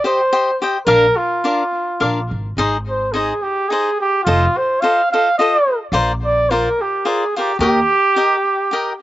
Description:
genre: mexican folk, mariachi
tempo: 107 BPM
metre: 3/4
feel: swing 55% on 8ths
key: unclear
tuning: A4 = 440 Hz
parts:
  - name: mellow trumpet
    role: melody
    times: 0.0-9.0 s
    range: F4 to F5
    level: -16 LUFS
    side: right 1 dB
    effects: none
  - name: cavaquinho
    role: accompaniment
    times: 0.0-8.9 s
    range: D4 to G5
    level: -20 LUFS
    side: left 2 dB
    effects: none
  - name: upright bass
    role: bass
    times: 0.9-7.8 s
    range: F1 to Eb2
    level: -21 LUFS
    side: equal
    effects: none
room: light reverb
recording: recorded outdoors, with no room sound, nothing above 7.7 kHz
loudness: -14 LUFS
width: side -14 dB against mid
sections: 0.0-9.0 A section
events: none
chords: 0.0 Cm; 0.9 Bb; 2.6 Ab; 4.3 F7; 5.9 Bbadd9; 7.6 Eb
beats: 0.30 | 0.86 1.43 2.00 | 2.57 3.13 3.70 | 4.26 4.82 5.38 | 5.93 6.48 7.04 | 7.60 8.16 8.73

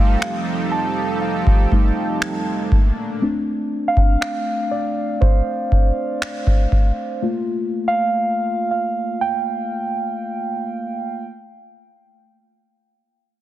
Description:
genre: contemporary R&B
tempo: 60 BPM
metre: 4/4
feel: straight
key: G minor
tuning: A4 = 440 Hz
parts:
  - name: muted felt-like synth keys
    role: accompaniment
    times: 0.0-11.2 s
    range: G3 to A5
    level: -21 LUFS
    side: right 1 dB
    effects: chorus
  - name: chorused pulse-width pad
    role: sustained chords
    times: 0.0-3.2 s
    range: F3 to A4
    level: -25 LUFS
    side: right 2 dB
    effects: none
  - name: downlifter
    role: sound effects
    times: 0.0-3.2 s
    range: none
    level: barely audible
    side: none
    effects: none
  - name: booming analog drum machine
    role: drums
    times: 0.2-6.9 s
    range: finger snaps, kick drum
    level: -16 LUFS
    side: equal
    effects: soft clipping on snare
room: light reverb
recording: dense, heavily limited modern master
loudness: -18 LUFS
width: side -13 dB against mid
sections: 0.0-11.2 A section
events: synth keys solo 0.0-11.2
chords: 0.0 F7; 2.7 Bbmaj7; 7.2 Gm7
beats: 0.22 1.22 2.22 | 3.22 4.22 5.22 6.22 | 7.22 8.22 9.22 10.22

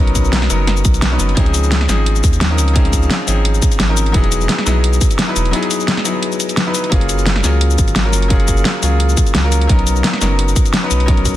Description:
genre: liquid drum and bass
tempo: 173 BPM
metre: 4/4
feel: swing 54% on 16ths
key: F# major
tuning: A4 = 441 Hz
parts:
  - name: bright grand piano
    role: accompaniment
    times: 0.0-11.4 s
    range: E#3 to B4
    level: -19 LUFS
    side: left 2 dB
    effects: dub echo
  - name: saturated sub bass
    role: bass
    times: 0.0-11.4 s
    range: E1 to D#2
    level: -15 LUFS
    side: equal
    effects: tube saturation
  - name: pop drum kit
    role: drums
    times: 0.1-11.3 s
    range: cabasa, hi-hat, snare drum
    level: -18 LUFS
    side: left 1 dB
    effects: small room ambience
  - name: electronic kick drum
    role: drums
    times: 0.2-11.3 s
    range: none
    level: -14 LUFS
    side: equal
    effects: small room ambience
room: light reverb, digital ambience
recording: dense, heavily limited modern master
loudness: -12 LUFS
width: side -14 dB against mid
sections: 0.0-11.4 A section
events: break 5.5-6.9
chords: 0.0 Bmaj9; 1.4 C#maj9; 4.1 Emaj9; 6.9 F#maj9; 9.7 Bmaj9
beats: 0.33 0.68 1.02 | 1.37 1.72 2.06 2.41 | 2.76 3.10 3.45 3.80 | 4.14 4.49 4.84 5.19 | 5.53 5.88 6.23 6.57 | 6.92 7.27 7.61 7.96 | 8.31 8.65 9.00 9.35 | 9.69 10.04 10.39 10.73 | 11.08

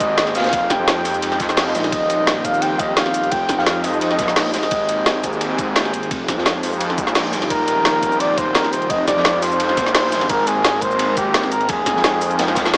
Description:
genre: liquid drum and bass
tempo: 172 BPM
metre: 4/4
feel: straight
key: F minor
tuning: A4 = 440 Hz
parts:
  - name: warm flugelhorn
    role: melody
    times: 0.0-5.2, 7.5-12.7 s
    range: G4 to G5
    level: -20 LUFS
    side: equal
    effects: vintage 12-bit sampler grit, tape echo
  - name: airy breathy pad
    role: sustained chords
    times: 0.0-12.8 s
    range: F3 to G5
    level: -24 LUFS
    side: equal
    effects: chorus, sidechain pumping
  - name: swelling detuned saw bass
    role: bass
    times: 0.0-12.8 s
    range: Eb1 to F2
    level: -23 LUFS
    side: equal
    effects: none
  - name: crunchy breakbeat drum kit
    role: drums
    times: 0.0-12.8 s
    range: hi-hat, ride cymbal, snare drum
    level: -26 LUFS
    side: equal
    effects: high-pass filter on cymbals, high-pass filter on hats, high-pass filter on snare, high-pass filter on room
  - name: drum and bass drum kit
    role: drums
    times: 0.0-12.8 s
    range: hi-hat, ride cymbal, shaker, snare drum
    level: -21 LUFS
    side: equal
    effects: overdrive
  - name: electronic kick drum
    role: drums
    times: 0.0-12.6 s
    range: none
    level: -31 LUFS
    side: equal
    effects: overdrive
  - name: swell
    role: sound effects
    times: 1.4-1.9 s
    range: none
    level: -27 LUFS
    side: right 1 dB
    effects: none
room: moderate plate reverb, RT60 1.1 s, small room ambience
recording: dreamy mix soaked in reverb, small speaker sound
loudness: -15 LUFS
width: side -30 dB against mid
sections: 0.0-12.8 A section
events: swell 1.4-1.9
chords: 0.0 Abmaj9; 0.5 Fm9; 1.9 Eb69; 3.3 Fm9; 4.5 Abmaj9; 6.1 Fm9; 7.5 Eb69; 8.9 Fm9; 10.1 Abmaj9; 11.7 Fm9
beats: 0.18 | 0.53 0.88 1.23 1.57 | 1.92 2.27 2.62 2.97 | 3.32 3.67 4.02 4.37 | 4.71 5.06 5.41 5.76 | 6.11 6.46 6.81 7.16 | 7.50 7.85 8.20 8.55 | 8.90 9.25 9.60 9.95 | 10.29 10.64 10.99 11.34 | 11.69 12.04 12.39 12.74

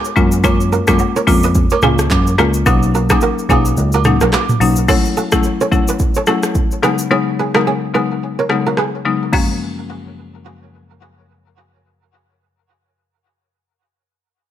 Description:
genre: afrobeats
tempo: 108 BPM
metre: 4/4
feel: swing 58% on 16ths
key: F# major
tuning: A4 = 440 Hz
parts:
  - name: kora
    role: riff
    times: 0.0-9.5 s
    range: C#4 to D#5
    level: -20 LUFS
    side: right 4 dB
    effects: ping-pong delay
  - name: afro-pop drum kit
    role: drums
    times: 0.0-9.5 s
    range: crash cymbal, handclaps, hi-hat, kick drum, rim click, shaker, toms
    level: -17 LUFS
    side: right 1 dB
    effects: none
  - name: buzzing marimba with hard mallets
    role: accompaniment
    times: 0.2-13.0 s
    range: F#2 to E#4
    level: -17 LUFS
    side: left 5 dB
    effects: none
  - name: bell-like tine electric piano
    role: bass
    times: 0.2-4.8 s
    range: B1 to F#2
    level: -16 LUFS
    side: right 1 dB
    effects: none
  - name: agogo bells and woodblock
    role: percussion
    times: 0.4-4.5 s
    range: none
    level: -24 LUFS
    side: right 9 dB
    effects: none
room: little or no reverb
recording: none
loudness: -12 LUFS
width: side -11 dB against mid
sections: 0.0-4.9 A section; 4.9-9.3 B section; 9.3-11.6 C section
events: kick muted 3.8-4.9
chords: 0.2 F#maj9; 2.7 Bmaj7; 4.9 Dmaj7 (rootless); 6.8 C#7sus4; 9.3 F#maj9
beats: | 0.44 1.00 1.55 2.11 | 2.66 3.22 3.77 4.33 | 4.88 5.44 6.00 6.55 | 7.11 7.66 8.22 8.77 | 9.33 9.88 10.44 11.00

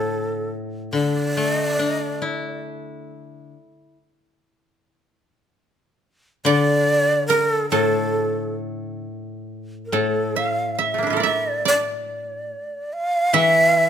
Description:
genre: japanese traditional, Japanese chamber music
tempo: 70 BPM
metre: 2/4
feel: uneven beats, rubato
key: A miyako bushi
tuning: A4 = 436 Hz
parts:
  - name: breathy bright shakuhachi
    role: melody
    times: 0.0-2.6, 6.4-13.9 s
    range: A4 to F5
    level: -21 LUFS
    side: right 1 dB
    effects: none
  - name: koto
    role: accompaniment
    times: 0.0-4.0, 6.4-13.9 s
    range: A2 to E4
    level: -24 LUFS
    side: left 3 dB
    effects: none
  - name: koto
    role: second line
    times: 6.5-13.9 s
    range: A3 to F5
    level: -23 LUFS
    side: right 7 dB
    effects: none
room: light reverb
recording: close, detailed microphones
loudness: -18 LUFS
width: side -8 dB against mid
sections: 0.0-9.9 A section; 9.9-13.9 B section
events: none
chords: none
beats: 0.54 | 1.37 2.23 | 3.10 3.96 | 4.80 5.64 | 6.47 7.31 | 8.17 9.05 | 9.94 10.81 | 11.67 12.52 | 13.36

